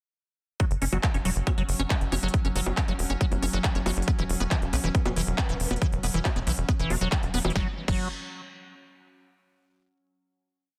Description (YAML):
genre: psychedelic trance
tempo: 138 BPM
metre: 4/4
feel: straight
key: unclear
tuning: A4 = 438 Hz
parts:
  - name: evolving wavetable pad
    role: sustained chords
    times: 1.2-7.6 s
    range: F#3 to C#4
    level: -39 LUFS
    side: equal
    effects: chorus, built-in reverb, sidechain pumping
  - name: liquid acid bass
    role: riff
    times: 0.6-8.1 s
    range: E3 to C#4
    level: -34 LUFS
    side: equal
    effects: chorus, cassette tape, sidechain pumping, digital delay
  - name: big-room dance drum kit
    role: drums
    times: 0.6-8.0 s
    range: bongos, crash cymbal, handclaps, hi-hat, snare drum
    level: -35 LUFS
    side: equal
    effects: overdrive
  - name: electronic kick drum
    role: drums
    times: 0.6-8.0 s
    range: none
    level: -29 LUFS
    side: equal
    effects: overdrive
  - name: tight sequencer bass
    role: bass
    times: 0.7-8.1 s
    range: E1 to B1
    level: -31 LUFS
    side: equal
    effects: none
  - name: formant-sweep wobble bass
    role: second line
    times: 4.9-5.8 s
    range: B3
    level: -43 LUFS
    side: equal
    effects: lush chorus, sidechain pumping, high-pass filter, dub echo
room: light reverb, digital ambience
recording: dense, heavily limited modern master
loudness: -26 LUFS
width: mono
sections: 0.6-7.6 drop; 7.6-9.3 final chord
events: drop 0.6-7.6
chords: 0.6 F#5; 4.1 E5; 7.6 N.C.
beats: | 0.60 1.03 1.47 1.90 | 2.34 2.77 3.21 3.64 | 4.08 4.51 4.95 5.38 | 5.82 6.25 6.69 7.12 | 7.56 7.99